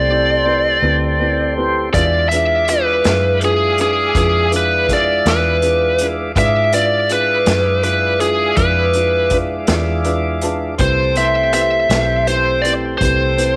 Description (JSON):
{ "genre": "slow blues", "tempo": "54 BPM (dotted quarters)", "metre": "12/8", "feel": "straight", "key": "unclear", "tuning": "A4 = 440 Hz", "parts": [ { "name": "biting lead guitar", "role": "melody", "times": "0.0-13.6 s", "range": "G#4 to E5", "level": "-18 LUFS", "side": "equal", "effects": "overdrive, slapback echo" }, { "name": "tonewheel organ", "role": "sustained chords", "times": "0.0-13.6 s", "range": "G#3 to D5", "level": "-24 LUFS", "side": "equal", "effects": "slow rotary speaker" }, { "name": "vintage muted fingered electric bass", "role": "bass", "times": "0.0-13.6 s", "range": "B1 to G#2", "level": "-23 LUFS", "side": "equal", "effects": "none" }, { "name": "dark upright piano", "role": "accompaniment", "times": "0.1-13.6 s", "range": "C4 to A5", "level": "-26 LUFS", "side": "equal", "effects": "none" }, { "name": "vintage drum kit", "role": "drums", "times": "1.9-13.6 s", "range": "hi-hat, kick drum, snare drum", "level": "-23 LUFS", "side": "equal", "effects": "none" } ], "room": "light reverb, studio reverb", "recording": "none", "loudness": "-16 LUFS", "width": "mono", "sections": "0.0-13.6 A section", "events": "upright piano fill 9.7-10.8", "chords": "0.0 Am9; 1.9 E7b9; 10.8 Am9" }